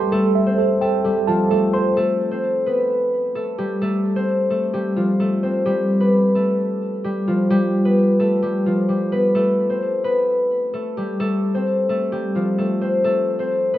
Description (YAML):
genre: hip hop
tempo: 130 BPM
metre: 4/4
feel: half-time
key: unclear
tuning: A4 = 441 Hz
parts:
  - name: concert harp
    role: melody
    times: 0.0-13.8 s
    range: F3 to C5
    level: -18 LUFS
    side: left 1 dB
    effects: low-pass filter
  - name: mellow tine electric piano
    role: accompaniment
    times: 0.0-2.0 s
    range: A4 to C6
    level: -20 LUFS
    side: right 4 dB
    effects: medium stereo tremolo, low-pass filter
room: light reverb, small room ambience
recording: rough home demo mix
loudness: -17 LUFS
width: side -13 dB against mid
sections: 0.0-2.0 A section; 2.0-13.8 B section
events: none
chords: 0.0 Am7; 2.0 F; 5.7 G; 9.4 F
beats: | 0.12 0.58 1.04 1.50 | 1.97 2.43 2.89 3.35 | 3.81 4.27 4.74 5.20 | 5.66 6.12 6.58 7.04 | 7.50 7.97 8.43 8.89 | 9.35 9.81 10.27 10.74 | 11.20 11.66 12.12 12.58 | 13.04 13.51